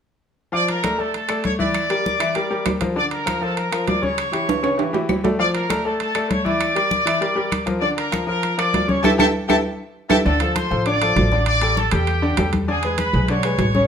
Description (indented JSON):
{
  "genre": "latin, salsa",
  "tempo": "198 BPM",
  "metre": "4/4",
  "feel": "straight",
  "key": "D harmonic minor",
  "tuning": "A4 = 440 Hz",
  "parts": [
    { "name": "clear trumpet section", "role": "melody", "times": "0.5-13.9 s", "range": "G4 to D6", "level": "-22 LUFS", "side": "equal", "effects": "none" },
    { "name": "bright concert grand piano", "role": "accompaniment", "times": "0.5-13.9 s", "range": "C#3 to F5", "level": "-23 LUFS", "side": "left 2 dB", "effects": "none" },
    { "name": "congas", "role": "percussion", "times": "0.5-13.9 s", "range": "none", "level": "-25 LUFS", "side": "left 2 dB", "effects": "none" },
    { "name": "timbales", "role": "percussion", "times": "0.7-13.7 s", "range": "none", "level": "-25 LUFS", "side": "right 8 dB", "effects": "none" },
    { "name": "claves", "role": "percussion", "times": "0.8-10.2 s", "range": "none", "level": "-30 LUFS", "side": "left 4 dB", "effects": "none" },
    { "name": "upright bass", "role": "bass", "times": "10.3-13.9 s", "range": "A1 to E2", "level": "-21 LUFS", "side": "right 1 dB", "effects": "none" }
  ],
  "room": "moderate large studio reverb, RT60 1.1 s",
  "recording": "minimal, uncompressed stereo recording",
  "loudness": "-17 LUFS",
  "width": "side -7 dB against mid",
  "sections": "0.5-10.3 A section; 10.3-13.9 B section",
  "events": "drum fill 4.5-5.4, 9.5-10.3; band accent 9.0-10.3",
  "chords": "0.5 Dm; 1.7 Em7b5; 3.0 Bb; 4.2 A7; 5.4 Dm; 6.6 Em7b5; 7.8 Bb; 9.0 A5; 10.3 Dm; 11.5 A7sus4; 12.7 E7",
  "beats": "| 0.53 0.84 1.14 1.45 | 1.75 2.05 2.36 2.66 | 2.96 3.27 3.57 3.88 | 4.18 4.48 4.79 5.09 | 5.39 5.70 6.00 6.31 | 6.61 6.91 7.22 7.52 | 7.82 8.13 8.43 8.73 | 9.04 9.34 9.64 9.95 | 10.25 10.55 10.86 11.16 | 11.46 11.77 12.07 12.38 | 12.68 12.98 13.29 13.59"
}